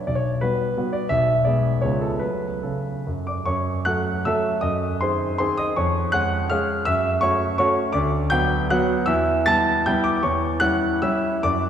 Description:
classical, romantic triple-time dance for piano with dotted rhythms; 132-184 BPM; 3/4; rubato; F# minor; A4 = 438 Hz
warm grand piano; solo; 0.0-11.7 s; B1 to A6; -19 LUFS; equal
wet church reverb, RT60 3.0 s; recorded in a church or concert hall; -19 LUFS; side -9 dB against mid
0.0-3.5 A section; 3.5-11.7 B section
0.1 Gmaj7/B; 1.1 G#dim/B; 1.8 C#7; 2.2 F#m; 4.6 G#7/F#; 5.7 C#/E#; 6.9 F#m; 7.9 Bm/D; 9.1 Em; 10.2 C#dim/E

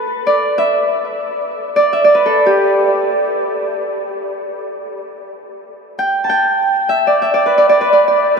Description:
world meditative; free time; G major pentatonic; A4 = 440 Hz
Celtic harp; solo; 0.0-8.4 s; G4 to A5; -13 LUFS; right 1 dB; ping-pong delay
wet huge ambient reverb, RT60 7.9 s; in a vast, echoing space; -12 LUFS; side -5 dB against mid
0.0-8.4 A section

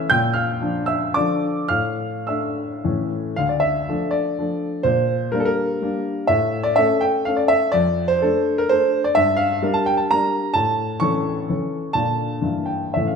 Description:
classical, romantic triple-time dance for piano with dotted rhythms; 98-140 BPM; 3/4; rubato; D minor; A4 = 439 Hz
warm baby grand piano; solo; 0.0-13.2 s; D2 to G6; -18 LUFS; equal
wet recital hall reverb, RT60 1.5 s; -18 LUFS; side -6 dB against mid
0.0-3.4 A section; 3.4-13.2 B section
0.1 Bb; 1.7 Asus4; 2.8 A; 3.4 Dm; 4.9 Gm/Bb; 6.3 A; 7.7 Dm/F; 9.2 Gm; 10.5 A; 12.0 Bb; 12.4 Edim/G

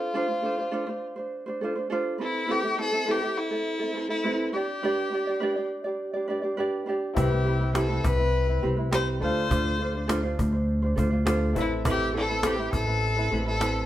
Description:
acoustic pop; 102 BPM; 4/4; straight; A4 = 436 Hz
rich violin; melody; 0.0-13.9 s; E4 to C5; -29 LUFS; left 2 dB
ukulele; accompaniment; 0.0-13.9 s; C4 to D5; -28 LUFS; right 2 dB
bright upright piano; accompaniment; 7.1-13.9 s; C4 to F5; -36 LUFS; left 4 dB
upright bass; bass; 7.2-13.9 s; A1 to D2; -26 LUFS; equal
cajon; drums; 7.2-13.7 s; -31 LUFS; equal
wet studio reverb, RT60 0.8 s; heard from further back in the room; -24 LUFS; side -13 dB against mid
0.0-13.9 A section
0.0 Dm7; 2.2 Amadd9; 4.5 G; 7.2 Cmaj7; 9.2 Dm7; 11.6 Amadd9

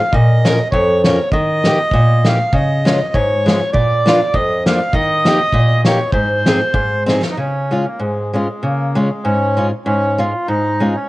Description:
alpine folk, alpine dance band; 98 BPM; 2/4; swing 54% on 8ths, rubato; Ab major, Db major from 7.4 s; A4 = 440 Hz
accordion; melody; 0.0-11.1 s; Ab3 to F5; -18 LUFS; right 1 dB; cassette tape
picked steel-string acoustic guitar; accompaniment; 0.1-10.9 s; F2 to Bb4; -15 LUFS; equal; cassette tape
loose indie drum kit; drums; 0.1-7.4 s; kick drum, snare drum; -19 LUFS; equal
small room ambience; home recording on cassette; -13 LUFS; side -18 dB against mid
0.0-7.4 A section; 7.4-11.1 B section
drum fill 7.1-7.4
0.1 Bbm; 1.3 Eb; 2.5 Db; 3.7 Bb; 4.9 Eb; 6.1 Ab; 7.4 Db/Ab

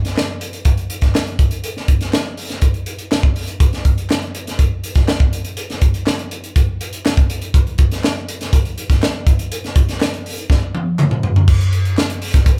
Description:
pop; 122 BPM; 4/4; straight
crisp fusion drum kit; drums; 0.0-12.6 s; crash cymbal, hi-hat, kick drum, snare drum, toms; -17 LUFS; equal
group handclap; percussion; 0.2-12.1 s; -36 LUFS; equal
light reverb; band playing live in one room; -17 LUFS; mono
0.0-11.5 A section; 11.5-12.6 B section
drum fill 10.5-11.5

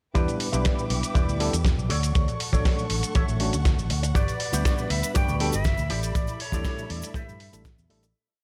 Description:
nu-disco, nu disco; 120 BPM; 4/4; straight; A4 = 442 Hz
tine electric piano; accompaniment; 0.1-8.0 s; F#3 to F#5; -34 LUFS; equal; overdrive, vintage 12-bit sampler grit, analog delay
electric guitar with an envelope filter; riff; 0.1-8.1 s; E4 to E5; -37 LUFS; equal; analog chorus, analog delay
warm studio string section; sustained chords; 0.2-8.1 s; A4 to D6; -40 LUFS; equal; vintage 12-bit sampler grit, sidechain pumping
fingered electric bass; bass; 0.2-8.1 s; E1 to A2; -30 LUFS; equal
dusty soul sampler-style drum kit; drums; 0.2-8.1 s; hi-hat, shaker, snare drum; -35 LUFS; equal
kick drum; drums; 0.2-7.8 s; -28 LUFS; equal
breathy bright jazz flute; melody; 4.1-7.6 s; C#5 to G5; -36 LUFS; equal
cabasa; percussion; 4.2-8.1 s; -44 LUFS; equal
little or no reverb; -25 LUFS; mono
0.2-8.2 drop
drop 0.2-8.2; fade-out 5.5-8.2
0.2 Em7; 1.9 Dmaj7; 4.2 Gmaj7; 5.9 A7sus4

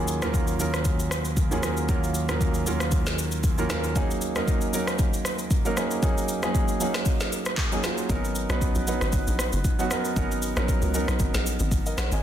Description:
amapiano; 116 BPM; 4/4; swing 55% on 16ths; A4 = 440 Hz
warm concert grand piano; accompaniment; 0.0-12.2 s; Eb2 to Ab5; -26 LUFS; right 2 dB
deep house drum kit; drums; 0.1-12.2 s; handclaps, kick drum, rim click, shaker, snare drum; -26 LUFS; equal; soft clipping on snare
hollow log drum bass; bass; 8.1-12.2 s; Gb1 to Db2; -27 LUFS; equal
light reverb, digital ambience; dense, heavily limited modern master; -23 LUFS; side -10 dB against mid
0.0-12.2 A section
0.0 Ebm11; 4.0 Gb69; 8.1 Abm11

